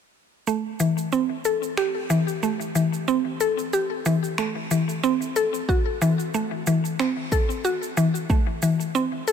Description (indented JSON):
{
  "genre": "organic downtempo",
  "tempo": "92 BPM",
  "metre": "4/4",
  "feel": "swing 55% on 16ths",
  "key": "A dorian",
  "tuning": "A4 = 436 Hz",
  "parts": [
    { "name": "mallet-like synth pluck", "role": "arpeggios", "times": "0.5-9.3 s", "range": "E3 to A4", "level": "-22 LUFS", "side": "left 1 dB", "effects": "chorus, ping-pong delay" },
    { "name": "electronic cabasa and finger snaps", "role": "drums", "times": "0.5-9.3 s", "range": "none", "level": "-34 LUFS", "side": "right 4 dB", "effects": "studio reverb" },
    { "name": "electronic kick drum", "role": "drums", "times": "5.7-8.4 s", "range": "none", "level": "-22 LUFS", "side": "right 1 dB", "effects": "studio reverb" }
  ],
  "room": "light reverb",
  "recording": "none",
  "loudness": "-21 LUFS",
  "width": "side -7 dB against mid",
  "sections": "0.5-9.3 A section",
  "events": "none",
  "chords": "none"
}